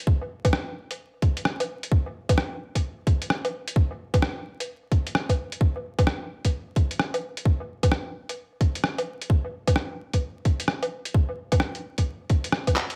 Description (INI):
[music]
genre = future garage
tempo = 130 BPM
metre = 4/4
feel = swing 64% on 16ths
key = none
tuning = none
[part]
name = electronic kick drum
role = drums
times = 0.1-12.7 s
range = none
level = -25 LUFS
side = equal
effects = studio reverb
[part]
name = lo-fi sampler-style drum kit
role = drums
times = 0.4-13.0 s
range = handclaps, hi-hat, rim click, woodblock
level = -29 LUFS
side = equal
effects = overdrive, studio reverb, analog delay
[sound]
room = light reverb, digital ambience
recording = echo-heavy mix, vinyl crackle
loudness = -26 LUFS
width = mono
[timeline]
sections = 0.0-13.0 A section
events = drum fill 12.8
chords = none